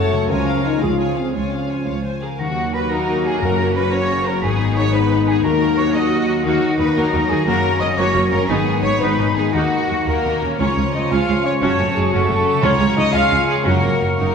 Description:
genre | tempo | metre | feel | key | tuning
cinematic, heroic adventure film score | 117 BPM (dotted quarters) | 6/8 | straight | Db major from 10.6 s | A4 = 440 Hz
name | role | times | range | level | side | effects
rich symphonic violin section | melody | 0.0-14.3 s | Ab3 to A5 | -28 LUFS | left 3 dB | none
warm symphonic violin section | second line | 0.0-14.3 s | F4 to F5 | -24 LUFS | left 2 dB | none
rich symphonic viola section | accompaniment | 0.0-14.3 s | F3 to Db5 | -26 LUFS | right 3 dB | none
clear trombone section | sustained chords | 0.0-14.3 s | Db3 to A#3 | -27 LUFS | right 4 dB | none
warm French horn section | sustained chords | 0.0-14.3 s | A3 to Ab4 | -24 LUFS | left 6 dB | none
concert harp | arpeggios | 0.0-14.3 s | Gb2 to Bb5 | -24 LUFS | left 7 dB | none
clear symphonic double bass section | bass | 0.0-14.3 s | Gb1 to D#2 | -24 LUFS | right 3 dB | none
rich symphonic cello section | bass | 0.0-14.3 s | Db2 to F#4 | -26 LUFS | right 3 dB | none
silver concert flute | second line | 2.2-14.3 s | F#5 to D#6 | -26 LUFS | equal | none
bright oboe | second line | 2.4-14.3 s | A#5 to Db6 | -28 LUFS | right 1 dB | none
mellow clarinet | second line | 2.4-14.3 s | C#4 to F#4 | -30 LUFS | left 2 dB | none
timpani | percussion | 3.4-3.9, 12.6-13.1 s | F#2 to Db3 | -25 LUFS | right 1 dB | none
mellow trumpet section | stabs | 10.1-14.3 s | Ab4 to F5 | -25 LUFS | right 1 dB | none
room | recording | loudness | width
wet scoring stage reverb, RT60 2.0 s | studio reverb | -15 LUFS | side -6 dB against mid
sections
0.0-2.4 A section; 2.4-10.6 B section; 10.6-14.3 A section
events
none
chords
0.3 Db; 2.4 D#m; 3.4 F#; 4.4 G#m; 5.4 D#m; 7.5 F#; 8.5 G#m; 9.5 D#m; 10.6 Db; 11.6 Gbm; 12.6 Db; 13.7 Gb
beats
| 0.30 0.81 | 1.34 1.87 | 2.40 2.91 | 3.42 3.93 | 4.43 4.94 | 5.44 5.95 | 6.45 6.96 | 7.47 7.98 | 8.49 9.01 | 9.54 10.07 | 10.60 11.11 | 11.62 12.12 | 12.63 13.14 | 13.66 14.18

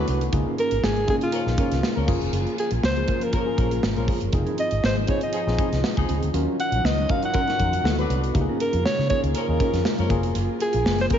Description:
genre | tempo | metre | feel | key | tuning
polished 1980s jazz-funk pop | 120 BPM | 4/4 | swing 54% on 16ths | unclear | A4 = 440 Hz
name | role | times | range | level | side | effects
clear alto saxophone | melody | 0.0-11.2 s | F4 to Gb5 | -26 LUFS | right 1 dB | slapback echo, tape echo
mellow horn section | second line | 0.0-10.3 s | F3 to B4 | -34 LUFS | left 2 dB | slapback echo
tine electric piano | accompaniment | 0.0-11.2 s | A3 to Bb4 | -29 LUFS | left 4 dB | wide subtle chorus, slapback echo
soft string machine | sustained chords | 0.0-11.2 s | Db3 to Bb4 | -34 LUFS | equal | none
mellow electric guitar | riff | 0.0-11.2 s | Gb3 to B4 | -32 LUFS | right 6 dB | lush chorus
vintage muted fingered electric bass | bass | 0.0-11.1 s | F1 to Db3 | -25 LUFS | equal | none
modern studio drum kit | drums | 0.1-11.2 s | crash cymbal, hi-hat, kick drum, snare drum | -26 LUFS | equal | none
room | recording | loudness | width
moderate lush hall reverb, RT60 1.9 s, small room ambience | big arena sound, nothing above 7.5 kHz | -20 LUFS | side -9 dB against mid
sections
0.0-11.2 A section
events
none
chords
0.3 Db6; 2.1 Gbmaj9; 4.3 Fm7; 6.3 Ebm9; 7.8 D6; 8.3 Db6; 10.1 Gbmaj9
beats
| 0.33 0.83 1.33 1.83 | 2.33 2.83 3.33 3.83 | 4.33 4.83 5.34 5.84 | 6.34 6.84 7.34 7.84 | 8.35 8.85 9.35 9.85 | 10.35 10.86

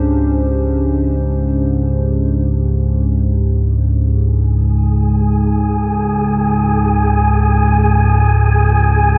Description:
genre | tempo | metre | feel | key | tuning
dark ambient drone | free time | none | none | unclear | A4 = 440 Hz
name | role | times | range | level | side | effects
dark analog pad | sustained chords | 0.0-4.2 s | C#4 to C5 | -24 LUFS | equal | chorus, phaser
analog drone | drone | 0.0-9.2 s | C#2 to G#2 | -16 LUFS | equal | subtle chorus
wind-like tuned noise texture | texture | 4.9-9.2 s | G#4 to G#5 | -20 LUFS | equal | built-in reverb
room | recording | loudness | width
moderate huge ambient reverb, RT60 8.2 s | none | -15 LUFS | mono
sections
0.0-4.2 A section; 4.2-9.2 B section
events
none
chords
0.0 Csus2/C#; 4.2 C#5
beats
free time

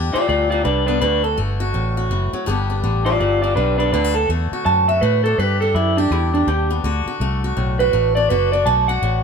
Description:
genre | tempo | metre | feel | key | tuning
honky-tonk and classic country | 165 BPM | 4/4 | swing 61% on 8ths | G major | A4 = 439 Hz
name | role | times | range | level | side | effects
picked swing-style acoustic guitar | accompaniment | 0.0-9.2 s | G2 to G4 | -24 LUFS | left 4 dB | none
vintage muted fingered electric bass | bass | 0.0-9.2 s | F#1 to A2 | -20 LUFS | equal | none
electric guitar through a small old amp | melody | 0.1-9.2 s | D4 to A5 | -18 LUFS | right 2 dB | none
room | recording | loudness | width
light reverb | none | -16 LUFS | side -6 dB against mid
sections
0.0-9.2 A section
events
clean electric guitar solo 0.0-9.2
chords
0.0 G; 1.0 D; 2.5 G; 3.9 D; 5.4 G5; 6.8 D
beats
0.28 0.65 | 1.01 1.38 1.74 2.11 | 2.47 2.84 3.20 3.57 | 3.93 4.29 4.66 5.02 | 5.39 5.75 6.12 6.48 | 6.84 7.21 7.57 7.93 | 8.30 8.66 9.03

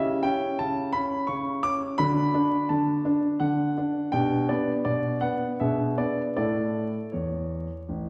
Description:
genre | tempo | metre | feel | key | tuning
classical-period piano sonatina | 78-86 BPM | 3/4 | rubato | D major | A4 = 440 Hz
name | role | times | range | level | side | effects
warm concert grand piano | solo | 0.0-8.1 s | A1 to D6 | -26 LUFS | equal | none
room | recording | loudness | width
wet recital hall reverb, RT60 1.6 s | heard from further back in the room, vinyl crackle | -26 LUFS | mono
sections
0.0-8.1 A section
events
none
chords
0.0 C#m7b5; 2.0 D; 4.1 G/B; 5.6 E7/B; 6.4 A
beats
0.59 1.29 | 1.99 2.70 3.42 | 4.14 4.87 5.61 | 6.36 7.13 7.88

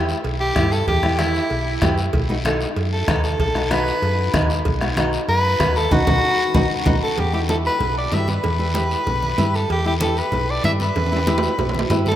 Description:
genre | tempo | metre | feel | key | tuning
latin, cumbia | 190 BPM | 4/4 | straight | E harmonic minor | A4 = 440 Hz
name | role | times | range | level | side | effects
flamenco guitar | accompaniment | 0.0-12.1 s | D#4 to B4 | -25 LUFS | equal | none
hollow-body short-scale fingered electric bass | bass | 0.0-12.2 s | B1 to G2 | -23 LUFS | equal | none
guiro | percussion | 0.1-12.2 s | none | -33 LUFS | left 4 dB | none
congas | percussion | 0.2-12.2 s | none | -28 LUFS | right 1 dB | none
cowbell and timbales | percussion | 0.2-12.2 s | none | -30 LUFS | right 5 dB | none
bright soprano saxophone | melody | 0.4-12.1 s | E4 to E5 | -22 LUFS | equal | none
bombo | percussion | 0.6-6.9 s | none | -24 LUFS | left 1 dB | none
room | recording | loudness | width
wet cathedral reverb, RT60 5.2 s | in a vast, echoing space | -17 LUFS | side -11 dB against mid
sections
0.0-7.2 A section; 7.2-12.2 B section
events
soprano saxophone solo 0.0-7.2; band accent 5.9-7.2; nylon-string guitar fill 6.2-7.2; drum fill 11.0-12.2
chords
0.0 Em; 2.1 B; 7.2 Em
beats
0.25 0.56 | 0.88 1.19 1.51 1.82 | 2.14 2.45 2.77 3.08 | 3.40 3.71 4.03 4.34 | 4.66 4.97 5.29 5.60 | 5.92 6.23 6.55 6.86 | 7.18 7.49 7.81 8.12 | 8.44 8.75 9.07 9.38 | 9.70 10.01 10.33 10.64 | 10.96 11.27 11.59 11.90

